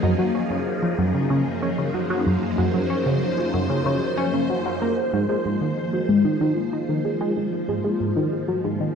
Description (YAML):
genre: ambient, sequencer-driven space music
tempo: 94 BPM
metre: 4/4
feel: straight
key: unclear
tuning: A4 = 438 Hz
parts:
  - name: phased string machine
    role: sustained chords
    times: 0.0-8.9 s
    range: Gb2 to C5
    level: -24 LUFS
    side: equal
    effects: ensemble chorus, phaser
  - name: tight sequenced synth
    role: riff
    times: 0.0-8.9 s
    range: Gb2 to Eb4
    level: -22 LUFS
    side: equal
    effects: chorus, phaser, analog delay
room: wet concert hall reverb, RT60 2.1 s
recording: dark, warm production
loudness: -20 LUFS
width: side -6 dB against mid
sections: 0.0-8.9 A section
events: none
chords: 0.0 Gbsus2; 5.0 Ab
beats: 0.51 1.15 1.78 | 2.42 3.06 3.70 4.34 | 4.98 5.62 6.25 6.89 | 7.53 8.17 8.81